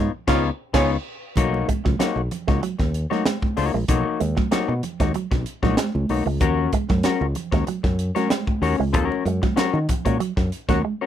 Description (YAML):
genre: funk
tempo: 95 BPM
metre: 4/4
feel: straight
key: unclear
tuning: A4 = 438 Hz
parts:
  - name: semi-hollow electric guitar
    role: accompaniment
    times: 0.0-11.1 s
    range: A#3 to C#5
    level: -24 LUFS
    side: left 9 dB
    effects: none
  - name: electric guitar with an envelope filter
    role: riff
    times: 0.0-11.0 s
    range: F#3 to G#3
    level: -27 LUFS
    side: right 10 dB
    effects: none
  - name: fingered electric bass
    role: bass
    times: 0.0-10.8 s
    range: A#1 to D#3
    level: -24 LUFS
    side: equal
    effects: none
  - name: breathy tenor saxophone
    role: second line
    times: 0.3-0.9, 10.7-10.8 s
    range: C#4 to F#4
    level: -24 LUFS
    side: right 9 dB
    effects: none
  - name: crisp fusion drum kit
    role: drums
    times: 0.3-10.8 s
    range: crash cymbal, hi-hat, kick drum, snare drum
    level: -24 LUFS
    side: equal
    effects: none
  - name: congas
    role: percussion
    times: 1.4-10.8 s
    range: none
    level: -31 LUFS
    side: right 4 dB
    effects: none
room: light reverb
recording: none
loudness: -20 LUFS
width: side -10 dB against mid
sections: 0.0-1.4 A section; 1.4-11.1 B section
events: band accent 0.1-1.4, 8.9-11.1; break 10.8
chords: 0.0 C#9; 1.4 Bmaj9; 6.4 D#m7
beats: 0.11 0.74 | 1.37 2.00 2.63 3.26 | 3.89 4.52 5.15 5.78 | 6.41 7.05 7.68 8.31 | 8.94 9.58 10.21 10.84